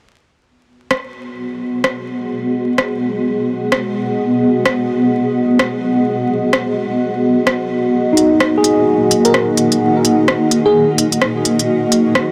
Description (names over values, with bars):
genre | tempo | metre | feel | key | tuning
future garage | 128 BPM | 4/4 | swing 60% on 16ths | G# minor | A4 = 440 Hz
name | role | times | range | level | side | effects
granular cloud pad | sustained chords | 1.3-12.3 s | A#3 to F#5 | -17 LUFS | equal | built-in reverb
organic electronic drum kit | drums | 0.9-12.3 s | hi-hat, rim click | -22 LUFS | equal | overdrive
tine electric piano | accompaniment | 8.1-12.3 s | D#4 to G#4 | -20 LUFS | equal | dub echo
bell-like FM electric piano | melody | 9.2-10.9 s | G#4 to A#4 | -21 LUFS | equal | chorus, phaser, dub echo
room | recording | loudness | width
moderate huge ambient reverb, RT60 7.6 s | dense, heavily limited modern master, vinyl crackle | -15 LUFS | mono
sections
0.4-12.3 A section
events
filter sweep on ambient pad 0.4-12.3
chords
0.4 G#m7; 7.9 D#m